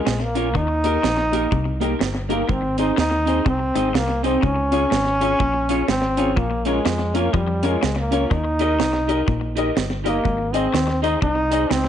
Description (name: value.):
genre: ska.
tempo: 124 BPM.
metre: 4/4.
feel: swing 60% on 8ths.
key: unclear.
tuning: A4 = 439 Hz.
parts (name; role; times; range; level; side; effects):
clear trombone; melody; 0.0-11.9 s; G3 to Eb4; -22 LUFS; equal; none.
semi-hollow electric guitar; riff; 0.1-11.9 s; G2 to F3; -29 LUFS; left 6 dB; slapback echo.
fingered electric bass; bass; 0.1-11.9 s; G1 to F2; -25 LUFS; equal; none.
deep reggae drum kit; drums; 0.1-11.8 s; hi-hat, kick drum, snare drum; -24 LUFS; right 4 dB; slapback echo.
clean electric guitar; accompaniment; 0.3-11.6 s; Bb3 to Eb5; -27 LUFS; right 9 dB; spring reverb, slapback echo.
warm upright piano; stabs; 0.4-11.6 s; Bb3 to Eb5; -26 LUFS; left 10 dB; none.
room: light reverb, small room ambience.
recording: 1960s-style stereo with parts hard left and right, nothing above 10.3 kHz.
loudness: -18 LUFS.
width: side -10 dB against mid.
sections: 0.0-11.9 A section.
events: none.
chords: 0.0 Bbm; 0.5 Eb; 2.5 Ab; 4.4 Db; 6.4 Bbm; 8.3 Eb; 10.3 Ab.